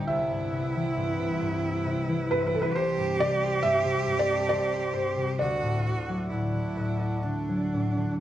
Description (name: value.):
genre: celtic folk, Celtic slow air.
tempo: 67 BPM.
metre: 3/4.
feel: rubato.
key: unclear.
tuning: A4 = 441 Hz.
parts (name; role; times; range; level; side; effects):
felt-muted upright piano; melody; 0.0-7.2 s; A4 to G5; -29 LUFS; right 1 dB; slapback echo.
bright cello; second line; 0.0-8.2 s; D4 to G4; -30 LUFS; right 4 dB; none.
concert harp; accompaniment; 0.0-8.2 s; C2 to A4; -29 LUFS; left 2 dB; none.
accordion; sustained chords; 0.0-8.2 s; C3 to C5; -38 LUFS; equal; none.
room: moderate recital hall reverb, RT60 1.4 s.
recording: dark, warm production.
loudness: -25 LUFS.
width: side -12 dB against mid.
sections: 0.0-8.2 A section.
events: none.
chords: 0.1 Cmaj7; 2.7 Am7/C; 5.4 D.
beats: | 0.08 0.96 1.85 | 2.75 3.62 4.50 | 5.40 6.30 7.24 | 8.20.